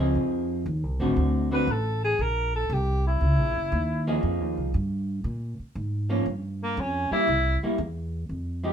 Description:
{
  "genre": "jazz, small-group swing and bop",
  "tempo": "118 BPM",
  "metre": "4/4",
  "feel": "swing 67% on 8ths",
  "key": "unclear",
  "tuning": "A4 = 439 Hz",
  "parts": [
    { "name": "vintage hollow-body jazz guitar", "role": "accompaniment", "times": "0.0-8.7 s", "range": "D3 to Ab4", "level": "-26 LUFS", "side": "equal", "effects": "none" },
    { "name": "upright bass", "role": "bass", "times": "0.0-8.7 s", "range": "Gb1 to Bb2", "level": "-27 LUFS", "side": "equal", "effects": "none" },
    { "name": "breathy alto saxophone", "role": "melody", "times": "1.5-7.6 s", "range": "Bb3 to B4", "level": "-26 LUFS", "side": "equal", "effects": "none" }
  ],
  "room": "moderate studio reverb, RT60 0.6 s",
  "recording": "minimal, uncompressed stereo recording",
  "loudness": "-24 LUFS",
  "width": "side -8 dB against mid",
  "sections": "0.0-8.3 A section",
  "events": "none",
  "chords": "0.2 Fm7; 1.2 D7; 2.2 C7(no3)/Bb; 3.2 Gb9; 4.2 Fm11; 6.3 Bbm6; 7.3 C7"
}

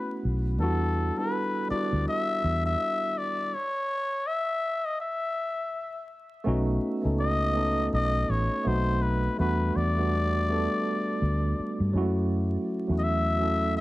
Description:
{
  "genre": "R&B, neo-soul",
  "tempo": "82 BPM",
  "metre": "4/4",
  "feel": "swing 59% on 16ths",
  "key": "E dorian",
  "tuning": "A4 = 440 Hz",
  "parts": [
    { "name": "trumpet with cup mute", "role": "melody", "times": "0.0-13.8 s", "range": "A4 to E5", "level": "-29 LUFS", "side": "left 2 dB", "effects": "none" },
    { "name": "tine electric piano", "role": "accompaniment", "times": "0.0-13.8 s", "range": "F#3 to A4", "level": "-29 LUFS", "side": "right 1 dB", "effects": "medium stereo tremolo" },
    { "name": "vintage muted fingered electric bass", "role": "bass", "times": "0.2-13.8 s", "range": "A1 to G2", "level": "-27 LUFS", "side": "equal", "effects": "none" }
  ],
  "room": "moderate studio reverb, RT60 0.6 s",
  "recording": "vinyl crackle",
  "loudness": "-25 LUFS",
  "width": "side -18 dB against mid",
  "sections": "0.0-6.5 A section; 6.5-13.8 B section",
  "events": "stop 3.5-6.5",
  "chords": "0.0 B9sus4; 0.6 Em9; 3.5 N.C.; 6.5 B7; 8.7 B7b9; 9.4 Em11; 11.9 F#m7"
}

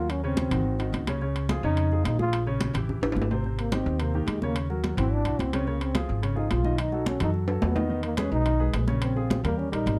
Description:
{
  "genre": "Afro-Cuban jazz",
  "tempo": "215 BPM",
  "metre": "4/4",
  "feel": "straight",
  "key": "Ab major",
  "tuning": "A4 = 440 Hz",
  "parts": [
    { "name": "breathy trombone", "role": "melody", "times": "0.0-10.0 s", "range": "Ab3 to F4", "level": "-32 LUFS", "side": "equal", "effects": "none" },
    { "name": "warm baby grand piano", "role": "accompaniment", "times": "0.0-10.0 s", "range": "C3 to Eb5", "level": "-34 LUFS", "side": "equal", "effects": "none" },
    { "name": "upright bass", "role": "bass", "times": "0.0-10.0 s", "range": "Ab1 to F#2", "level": "-30 LUFS", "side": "equal", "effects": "none" },
    { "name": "congas", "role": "percussion", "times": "0.1-10.0 s", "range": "none", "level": "-34 LUFS", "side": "equal", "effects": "none" },
    { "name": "timbales", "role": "percussion", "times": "0.1-10.0 s", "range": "none", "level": "-35 LUFS", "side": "equal", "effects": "none" }
  ],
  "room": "light reverb",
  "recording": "dark, warm production",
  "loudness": "-26 LUFS",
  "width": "mono",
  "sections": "0.0-3.4 A section; 3.4-10.0 B section",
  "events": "drum fill 3.0-3.4, 7.5-7.9; trombone solo 3.4-10.0",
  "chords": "0.1 Ebm7; 0.7 Ab7; 1.2 Db; 2.3 Bbm7; 2.9 A5; 3.4 Abmaj7; 4.6 Ebm7; 5.1 Ab7alt; 5.7 Db; 6.8 B7; 7.9 Emaj7; 9.0 Bbm9"
}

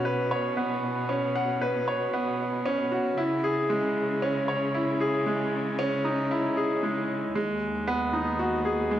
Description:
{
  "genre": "piano and strings electronica",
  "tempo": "115 BPM",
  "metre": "4/4",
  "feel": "straight",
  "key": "unclear",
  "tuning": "A4 = 440 Hz",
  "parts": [
    { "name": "bright grand piano", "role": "riff", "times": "0.0-9.0 s", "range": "G#3 to F#5", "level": "-25 LUFS", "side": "equal", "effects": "tape echo" },
    { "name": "warm symphonic cello section", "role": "bass", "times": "0.0-9.0 s", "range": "D#2 to C#3", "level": "-33 LUFS", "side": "left 2 dB", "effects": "none" }
  ],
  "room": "moderate spring reverb, RT60 2.6 s",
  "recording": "home recording on cassette",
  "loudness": "-25 LUFS",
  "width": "side -11 dB against mid",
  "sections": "0.0-9.0 A section",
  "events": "none",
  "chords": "0.0 Bsus2; 3.2 C#madd9; 7.4 G#m7/D#"
}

